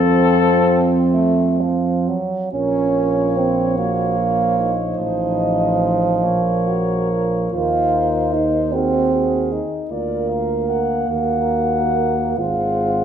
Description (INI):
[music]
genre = classical, hymn-like piece for brass band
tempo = 41-52 BPM (dotted quarters)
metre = 6/8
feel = rubato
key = Bb minor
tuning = A4 = 441 Hz
[part]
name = mellow flugelhorn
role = melody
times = 0.0-13.0 s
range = A4 to Gb5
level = -24 LUFS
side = left 9 dB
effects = none
[part]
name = warm French horn section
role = second line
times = 0.0-13.0 s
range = C4 to C5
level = -24 LUFS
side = right 6 dB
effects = none
[part]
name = clear euphonium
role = accompaniment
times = 0.0-13.0 s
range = C4 to Ab4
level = -25 LUFS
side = left 3 dB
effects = none
[part]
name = warm euphonium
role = accompaniment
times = 0.0-13.0 s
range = F3 to F4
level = -20 LUFS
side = right 3 dB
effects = none
[part]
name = mellow tuba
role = bass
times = 0.0-13.0 s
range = Ab1 to F2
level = -23 LUFS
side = right 1 dB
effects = none
[sound]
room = wet recital hall reverb, RT60 1.3 s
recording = minimal, uncompressed stereo recording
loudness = -16 LUFS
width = side -8 dB against mid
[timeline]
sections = 0.0-2.5 A section; 2.5-13.0 B section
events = none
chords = 0.0 F; 2.5 Bbm; 5.0 F7/A; 6.2 Bbm; 7.5 Ebm; 9.9 Bb/D; 11.1 Ebm; 12.4 Ab7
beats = 1.14 | 2.53 3.77 | 4.98 6.23 | 7.53 8.73 | 9.90 11.08 | 12.38